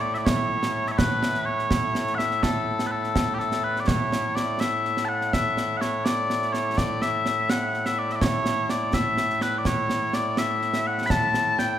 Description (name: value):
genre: scottish traditional, Scottish pipe music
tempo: 83 BPM (dotted quarters)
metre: 6/8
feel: straight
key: A major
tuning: A4 = 440 Hz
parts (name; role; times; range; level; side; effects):
- mellow small bagpipes; melody; 0.0-11.8 s; A2 to B5; -24 LUFS; left 1 dB; none
- concert snare drum and concert bass drum; drums; 0.1-11.7 s; none; -27 LUFS; right 1 dB; none
room: wet recital hall reverb, RT60 1.7 s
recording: recorded in a church or concert hall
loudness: -22 LUFS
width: side -11 dB against mid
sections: 0.0-3.9 A section; 3.9-11.8 B section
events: none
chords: none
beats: 0.26 | 0.98 1.71 | 2.43 3.15 | 3.88 4.60 | 5.32 6.04 | 6.77 7.49 | 8.21 8.94 | 9.66 10.38 | 11.11